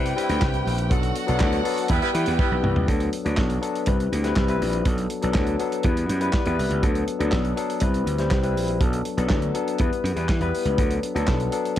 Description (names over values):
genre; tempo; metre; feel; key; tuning
disco; 122 BPM; 4/4; straight; D mixolydian; A4 = 439 Hz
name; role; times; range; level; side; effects
rich studio violin section; second line; 0.0-2.9 s; F#4 to G5; -30 LUFS; right 3 dB; none
barky tine electric piano; accompaniment; 0.0-11.8 s; F#3 to E5; -25 LUFS; left 4 dB; lush chorus
gritty slap bass; bass; 0.0-11.5 s; Bb1 to E3; -24 LUFS; right 1 dB; overdrive
warm soul drum kit; drums; 0.1-11.8 s; handclaps, hi-hat, kick drum, snare drum, toms; -25 LUFS; right 1 dB; none
clear horn section; stabs; 1.9-2.5 s; G3 to B4; -28 LUFS; right 4 dB; none
room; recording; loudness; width
studio ambience; dark, warm production; -20 LUFS; side -12 dB against mid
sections
0.0-2.9 A section; 2.9-11.8 B section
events
band accent 0.9-2.9; drum fill 2.4-2.9; tine electric piano fill 6.1-6.8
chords
0.0 Cmaj7; 0.9 Bm7; 1.9 Em; 2.9 D6; 3.9 Cmaj7; 4.9 Bm7; 5.8 Em; 6.8 D6; 7.8 Cmaj7; 8.8 Bm7; 9.8 Em; 10.8 D6